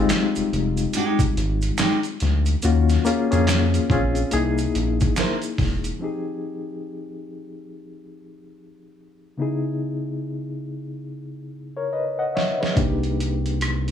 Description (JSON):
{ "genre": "R&B, neo-soul", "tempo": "71 BPM", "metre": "4/4", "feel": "swing 62% on 16ths", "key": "unclear", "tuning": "A4 = 440 Hz", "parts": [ { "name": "reed electric piano", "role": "accompaniment", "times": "0.0-13.9 s", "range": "Db3 to Gb5", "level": "-25 LUFS", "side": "left 4 dB", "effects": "overdrive, fast tremolo" }, { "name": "round analog bass", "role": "bass", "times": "0.0-5.9, 12.8-13.9 s", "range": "E1 to F2", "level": "-22 LUFS", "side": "equal", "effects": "none" }, { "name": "boom bap sampler-style drum kit", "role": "drums", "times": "0.1-6.0, 12.4-13.9 s", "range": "handclaps, hi-hat, kick drum, rim click, snare drum", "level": "-24 LUFS", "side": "equal", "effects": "overdrive" }, { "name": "finger snaps and tube shaker", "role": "percussion", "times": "0.1-6.0 s", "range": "none", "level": "-35 LUFS", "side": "right 8 dB", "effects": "none" }, { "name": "flamenco guitar", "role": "second line", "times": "1.0-5.4 s", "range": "Ab3 to C5", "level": "-26 LUFS", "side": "right 6 dB", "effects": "none" } ], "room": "studio reverb", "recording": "studio ambience", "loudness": "-20 LUFS", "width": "side -9 dB against mid", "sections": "0.0-6.0 A section; 6.0-13.9 B section", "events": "drum fill 11.9-12.8", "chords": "0.0 Fm9; 2.6 Ebm9; 3.9 Bbm9; 4.3 C7alt; 6.0 Fm9; 9.4 Dbm9; 12.8 Cm9" }